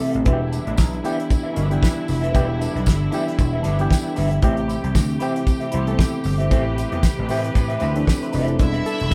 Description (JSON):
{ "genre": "disco", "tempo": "115 BPM", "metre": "4/4", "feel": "swing 56% on 16ths", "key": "E minor", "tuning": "A4 = 440 Hz", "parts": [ { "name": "mellow electric guitar", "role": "accompaniment", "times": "0.0-9.1 s", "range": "C4 to E5", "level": "-30 LUFS", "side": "equal", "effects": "wah, spring reverb" }, { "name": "reed electric piano", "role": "accompaniment", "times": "0.0-9.1 s", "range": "E3 to G5", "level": "-28 LUFS", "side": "equal", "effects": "none" }, { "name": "rich studio string section", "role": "sustained chords", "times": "0.0-9.1 s", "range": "C3 to B4", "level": "-32 LUFS", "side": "equal", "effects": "none" }, { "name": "damped 70s drum kit", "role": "drums", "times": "0.0-9.1 s", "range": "hi-hat, kick drum, snare drum", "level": "-21 LUFS", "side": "equal", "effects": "none" }, { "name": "vintage slap bass", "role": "bass", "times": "0.1-9.1 s", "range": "E1 to A2", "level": "-25 LUFS", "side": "equal", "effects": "none" }, { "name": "tambourine", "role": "percussion", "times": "0.5-9.1 s", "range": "none", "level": "-42 LUFS", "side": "equal", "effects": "none" }, { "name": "bright studio string section", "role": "second line", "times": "8.6-9.1 s", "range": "E4 to E5", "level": "-29 LUFS", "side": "equal", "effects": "none" } ], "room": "moderate studio ambience, RT60 0.5 s", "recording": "band playing live in one room", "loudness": "-21 LUFS", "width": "mono", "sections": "0.0-8.6 A section", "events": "reed electric piano fill 3.6-4.4", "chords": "0.3 Em7; 4.4 Am7; 8.6 Em7" }